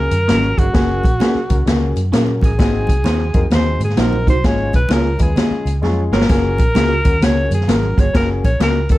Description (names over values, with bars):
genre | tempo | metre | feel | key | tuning
uptempo 1960s-style soul | 130 BPM | 4/4 | swing 64% on 8ths | F# major | A4 = 440 Hz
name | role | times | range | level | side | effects
warm alto saxophone | melody | 0.0-9.0 s | F#4 to C#5 | -21 LUFS | equal | none
dark upright piano | accompaniment | 0.0-9.0 s | G#3 to B4 | -24 LUFS | left 4 dB | none
vintage muted fingered electric bass | bass | 0.0-9.0 s | F#1 to A#2 | -19 LUFS | equal | none
swinging big-band drum kit | drums | 0.1-9.0 s | hi-hat, kick drum, snare drum | -16 LUFS | equal | vintage 12-bit sampler grit
congas | percussion | 0.1-9.0 s | none | -29 LUFS | right 1 dB | none
electric guitar through a small old amp | stabs | 0.3-8.8 s | A#3 to C#5 | -26 LUFS | right 6 dB | phaser, analog delay
room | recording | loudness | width
light reverb | cassette tape | -13 LUFS | side -16 dB against mid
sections
0.0-9.0 A section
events
drum fill 5.8-6.3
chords
0.0 F#add9; 2.6 G#7; 4.4 C#/G#; 6.3 F#add9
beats
0.29 | 0.75 1.21 1.67 2.13 | 2.60 3.06 3.52 3.98 | 4.45 4.91 5.37 5.83 | 6.29 6.76 7.22 7.68 | 8.14 8.61